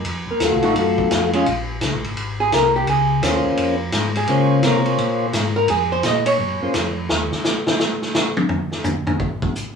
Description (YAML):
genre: soul jazz organ trio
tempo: 170 BPM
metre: 4/4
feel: swing 64% on 8ths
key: Bb minor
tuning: A4 = 440 Hz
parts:
  - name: mellow tonewheel organ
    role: bass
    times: 0.0-7.3 s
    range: Ab1 to Db3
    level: -23 LUFS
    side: left 2 dB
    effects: slow rotary speaker
  - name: vintage drum kit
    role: drums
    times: 0.0-9.7 s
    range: hi-hat, kick drum, ride cymbal, snare drum, toms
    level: -22 LUFS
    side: equal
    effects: none
  - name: percussive tonewheel organ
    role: melody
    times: 0.3-6.7 s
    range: A3 to Db5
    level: -20 LUFS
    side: left 2 dB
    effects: slow rotary speaker
  - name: archtop guitar, miked and amplified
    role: accompaniment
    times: 0.6-7.0 s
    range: F3 to Eb5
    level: -19 LUFS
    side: right 2 dB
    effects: none
room: wet small room reverb, RT60 0.6 s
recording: band playing live in one room, studio ambience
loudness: -17 LUFS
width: side -6 dB against mid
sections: 0.0-1.5 A section; 1.5-9.8 A section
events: tonewheel organ solo 0.0-1.5; hollow-body jazz guitar solo 1.5-9.8; drum solo 7.1-9.8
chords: 0.0 F7b9; 1.5 Bbm7; 7.1 N.C.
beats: | 0.05 0.40 0.75 1.11 | 1.46 1.81 2.16 2.52 | 2.87 3.22 3.57 3.93 | 4.28 4.63 4.98 5.34 | 5.69 6.04 6.39 6.74 | 7.10 7.45 7.80 8.15 | 8.50 8.86 9.21 9.56